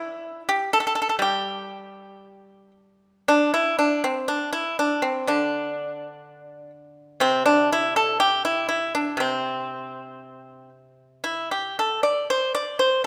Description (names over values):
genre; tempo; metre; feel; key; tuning
chinese traditional, Chinese solo plucked strings; 60 BPM; 2/4; uneven beats, rubato; G zhi mode; A4 = 440 Hz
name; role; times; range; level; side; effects
pipa; solo; 0.0-13.1 s; C3 to D5; -24 LUFS; equal; none
room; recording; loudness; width
moderate concert hall reverb, RT60 2.3 s; none; -23 LUFS; mono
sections
0.0-3.2 A section; 3.2-13.1 B section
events
none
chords
none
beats
0.17 | 1.19 2.22 | 3.25 4.28 | 5.29 6.26 | 7.23 8.20 | 9.20 10.21 | 11.25 12.28